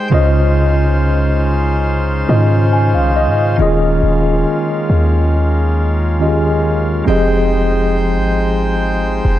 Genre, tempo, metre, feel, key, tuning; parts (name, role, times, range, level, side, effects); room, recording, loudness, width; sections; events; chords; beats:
R&B; 69 BPM; 4/4; straight; A4 = 440 Hz
mellow tine electric piano; accompaniment; 0.0-9.4 s; Db3 to Ab5; -16 LUFS; equal; medium stereo tremolo
chamber organ, cornet; sustained chords; 0.0-9.4 s; Eb3 to G5; -20 LUFS; equal
warm 808-style bass; bass; 0.1-9.4 s; Eb1 to Ab2; -15 LUFS; equal
small room reverb; dry, gritty hardware recording, transformer saturation; -12 LUFS; side -13 dB against mid
0.0-9.4 A section
tine electric piano fill 2.3-3.6
0.1 Dbmaj9; 3.6 Eb9sus4; 7.1 Fm9
| 0.12 0.99 1.86 2.73 | 3.60 4.47 5.34 6.21 | 7.08 7.94 8.81